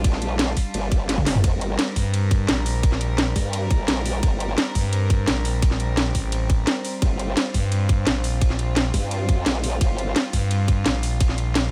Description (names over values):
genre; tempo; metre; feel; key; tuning
dark technical drum and bass; 172 BPM; 4/4; straight; G minor; A4 = 441 Hz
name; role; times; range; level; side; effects
clear studio string section; sustained chords; 0.0-11.7 s; G3 to Bb4; -34 LUFS; equal; sidechain pumping
growl bass; bass; 0.0-4.6, 7.0-10.1 s; F1 to G2; -28 LUFS; equal; chorus, tube saturation, sidechain pumping
drum and bass drum kit; drums; 0.0-11.6 s; hi-hat, ride cymbal, snare drum, toms; -27 LUFS; equal; none
electronic kick drum; drums; 0.0-11.3 s; none; -23 LUFS; equal; none
growling FM bass; bass; 2.0-11.7 s; A1 to G2; -25 LUFS; equal; none
room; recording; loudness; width
little or no reverb; none; -22 LUFS; mono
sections
0.0-11.7 A section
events
drum fill 1.1-1.4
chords
0.0 Gm